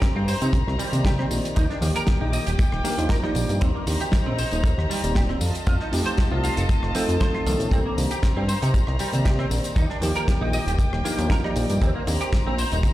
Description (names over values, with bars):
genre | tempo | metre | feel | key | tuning
nu-disco, nu disco | 117 BPM | 4/4 | straight | C dorian | A4 = 444 Hz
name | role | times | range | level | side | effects
warm studio string section | sustained chords | 0.0-12.9 s | Eb3 to D6 | -31 LUFS | left 1 dB | sidechain pumping
damped 70s drum kit | drums | 0.0-12.9 s | hi-hat, rim click, snare drum | -33 LUFS | right 1 dB | none
kick drum | drums | 0.0-12.9 s | none | -22 LUFS | equal | none
tambourine | percussion | 0.0-12.9 s | none | -38 LUFS | left 6 dB | none
semi-hollow electric guitar | riff | 0.2-12.8 s | G3 to F5 | -31 LUFS | right 2 dB | ensemble chorus, ping-pong delay
fat analog bass | bass | 0.2-12.9 s | Eb1 to C3 | -24 LUFS | equal | sidechain pumping
bell-like tine electric piano | accompaniment | 0.9-12.2 s | Eb3 to D5 | -28 LUFS | equal | ping-pong delay
room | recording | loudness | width
light reverb, small room ambience | played on a big sound system in a bare room, stone room reverb | -20 LUFS | side -15 dB against mid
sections
0.0-12.9 A section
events
none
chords
0.0 Cm7; 1.6 Ebmaj7; 3.6 Cm7; 5.4 F7; 7.7 Cm7; 9.8 Ebmaj7; 11.8 Cm7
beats
0.03 0.54 1.05 | 1.56 2.08 2.59 3.10 | 3.62 4.13 4.64 5.16 | 5.67 6.18 6.69 7.21 | 7.72 8.23 8.74 9.26 | 9.77 10.28 10.80 11.31 | 11.82 12.33 12.85